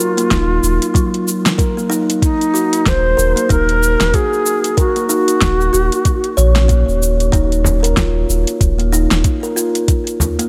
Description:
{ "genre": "organic downtempo", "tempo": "94 BPM", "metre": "4/4", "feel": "swing 58% on 16ths", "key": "Eb dorian", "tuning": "A4 = 440 Hz", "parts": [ { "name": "low Native American-style wooden flute", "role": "melody", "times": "0.0-6.7 s", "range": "Eb4 to C5", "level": "-20 LUFS", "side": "equal", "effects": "tape echo" }, { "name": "kalimba", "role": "arpeggios", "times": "0.0-10.5 s", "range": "Gb3 to Db5", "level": "-21 LUFS", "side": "equal", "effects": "digital delay" }, { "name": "deep house drum kit", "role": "drums", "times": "0.0-10.5 s", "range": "cabasa, hi-hat, snare drum", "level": "-22 LUFS", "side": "equal", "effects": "none" }, { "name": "warm sub bass", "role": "bass", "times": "0.3-9.2 s", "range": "Eb1 to Bb1", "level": "-18 LUFS", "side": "equal", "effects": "none" }, { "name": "electronic kick drum", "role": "drums", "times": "0.3-10.0 s", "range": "none", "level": "-18 LUFS", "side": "equal", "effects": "overdrive" }, { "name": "frame drum", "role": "percussion", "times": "7.6-10.4 s", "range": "none", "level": "-21 LUFS", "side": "equal", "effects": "none" } ], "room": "light reverb", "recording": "none", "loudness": "-15 LUFS", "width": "mono", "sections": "0.0-10.5 A section", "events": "none", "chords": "0.0 Ebmadd9; 7.3 Bb5/Eb", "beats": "0.31 0.95 1.59 | 2.23 2.87 3.50 4.14 | 4.78 5.42 6.06 6.70 | 7.33 7.97 8.61 9.25 | 9.89" }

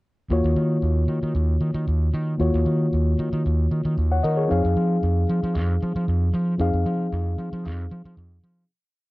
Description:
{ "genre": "disco", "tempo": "114 BPM", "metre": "4/4", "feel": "straight", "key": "Eb dorian", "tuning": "A4 = 439 Hz", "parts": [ { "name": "mellow reed electric piano", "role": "accompaniment", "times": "0.3-8.7 s", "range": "Eb3 to Gb5", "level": "-25 LUFS", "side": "left 2 dB", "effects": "none" }, { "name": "overdriven fingered electric bass", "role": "bass", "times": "0.3-8.6 s", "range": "Eb2 to F3", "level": "-22 LUFS", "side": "right 1 dB", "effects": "none" } ], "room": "light reverb", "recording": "dry, close 1970s-style studio recording", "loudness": "-20 LUFS", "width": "side -20 dB against mid", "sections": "0.3-8.7 groove", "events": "fade-out 6.6-8.7", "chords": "0.3 Ebm9; 4.5 Fm7", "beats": "| 0.30 0.82 1.34 1.87 | 2.39 2.92 3.44 3.97 | 4.49 5.02 5.54 6.07 | 6.59 7.12 7.64 8.16" }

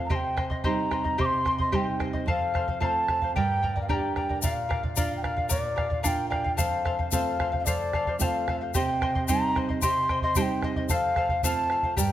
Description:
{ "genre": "andean folk, Andean ensemble", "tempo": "111 BPM", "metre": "2/4", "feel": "straight", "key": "unclear", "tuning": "A4 = 440 Hz", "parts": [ { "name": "mellow large quena", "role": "melody", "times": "0.0-12.1 s", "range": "D5 to D6", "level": "-28 LUFS", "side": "left 1 dB", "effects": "none" }, { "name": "charango", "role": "accompaniment", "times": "0.0-12.1 s", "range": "G4 to C6", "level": "-31 LUFS", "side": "left 3 dB", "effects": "none" }, { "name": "nylon-string guitar", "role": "accompaniment", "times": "0.0-12.1 s", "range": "F2 to G4", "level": "-31 LUFS", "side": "right 4 dB", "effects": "none" }, { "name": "bombo", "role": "percussion", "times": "0.1-12.1 s", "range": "none", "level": "-30 LUFS", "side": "right 1 dB", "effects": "none" }, { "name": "tube shaker", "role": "percussion", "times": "4.4-12.1 s", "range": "none", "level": "-34 LUFS", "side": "left 8 dB", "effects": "none" } ], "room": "moderate scoring stage reverb, RT60 1.8 s", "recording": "none", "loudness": "-24 LUFS", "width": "side -12 dB against mid", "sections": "0.0-4.4 A section; 4.4-12.1 A section", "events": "none", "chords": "0.1 Cm; 2.3 F; 3.3 Gm; 4.4 Bb; 6.6 F; 8.7 Cm; 10.9 F", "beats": "| 0.11 0.65 | 1.19 1.73 | 2.27 2.81 | 3.35 3.89 | 4.43 4.97 | 5.50 6.04 | 6.58 7.12 | 7.66 8.20 | 8.74 9.28 | 9.82 10.36 | 10.90 11.44 | 11.98" }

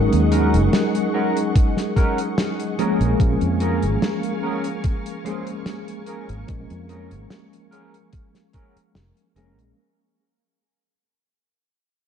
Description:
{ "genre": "vaporwave", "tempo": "73 BPM", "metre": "4/4", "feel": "swing 53% on 16ths", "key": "Bb minor", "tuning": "A4 = 440 Hz", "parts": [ { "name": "mellow tine electric piano", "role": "accompaniment", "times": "0.0-9.8 s", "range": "F3 to Bb4", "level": "-23 LUFS", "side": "equal", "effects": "medium stereo tremolo, analog chorus, analog delay" }, { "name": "soft string machine", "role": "sustained chords", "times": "0.0-9.7 s", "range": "Ab4 to Db6", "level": "-31 LUFS", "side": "left 1 dB", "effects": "ensemble chorus" }, { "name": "fingered electric bass", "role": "bass", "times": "0.0-9.7 s", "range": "F1 to F2", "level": "-21 LUFS", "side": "equal", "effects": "none" }, { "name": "damped 70s drum kit", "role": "drums", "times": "0.1-9.7 s", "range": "hi-hat, snare drum", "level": "-26 LUFS", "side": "equal", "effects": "vintage 12-bit sampler grit" }, { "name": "electric guitar through a small old amp", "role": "riff", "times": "0.3-9.6 s", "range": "Db4 to C5", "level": "-29 LUFS", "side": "right 1 dB", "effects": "analog chorus, low-pass filter, analog delay" }, { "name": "electronic kick drum", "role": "drums", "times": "1.6-8.7 s", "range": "none", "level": "-19 LUFS", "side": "equal", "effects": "vintage 12-bit sampler grit" } ], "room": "light reverb, small room ambience", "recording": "dark, warm production", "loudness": "-18 LUFS", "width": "side -8 dB against mid", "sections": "0.0-9.8 A section", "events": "fade-out 0.0-9.8", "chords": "0.0 Ab7sus4; 2.8 Bbm7", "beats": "0.73 1.55 2.37 | 3.19 4.02 4.84 5.66 | 6.48 7.30 8.12 8.95" }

